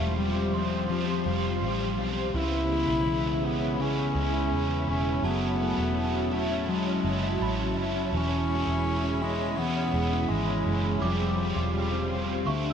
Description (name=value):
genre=dream pop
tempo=83 BPM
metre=4/4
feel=straight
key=unclear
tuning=A4 = 441 Hz
part: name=clear bass clarinet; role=melody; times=0.0-12.7 s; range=F3 to E4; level=-31 LUFS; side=left 2 dB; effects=ping-pong delay
part: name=overdriven electric guitar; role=accompaniment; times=0.0-12.7 s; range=E2 to F#4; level=-33 LUFS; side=right 5 dB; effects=harmonic tremolo, analog chorus
part: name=ethereal airy pad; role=sustained chords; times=0.0-12.7 s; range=F#4 to C6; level=-33 LUFS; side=right 2 dB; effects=ensemble chorus, built-in reverb
part: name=mellow electric guitar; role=arpeggios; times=0.0-12.7 s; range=E2 to F4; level=-31 LUFS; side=left 3 dB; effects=ensemble chorus, ping-pong delay
part: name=vintage muted fingered electric bass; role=bass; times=0.0-12.7 s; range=E1 to E2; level=-31 LUFS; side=right 1 dB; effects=none
part: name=synth chime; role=texture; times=0.5-12.7 s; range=A5 to D6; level=-40 LUFS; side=right 4 dB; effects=ensemble chorus, ping-pong delay
room=moderate huge ambient reverb, RT60 5.0 s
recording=none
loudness=-25 LUFS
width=side -8 dB against mid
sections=0.0-12.7 A section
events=none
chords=0.0 Fsus2; 2.3 C#m7; 5.2 F#m7; 8.1 E6; 11.0 Fsus2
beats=0.17 0.90 1.62 | 2.34 3.06 3.79 4.51 | 5.23 5.96 6.68 7.40 | 8.12 8.85 9.57 10.29 | 11.02 11.74 12.46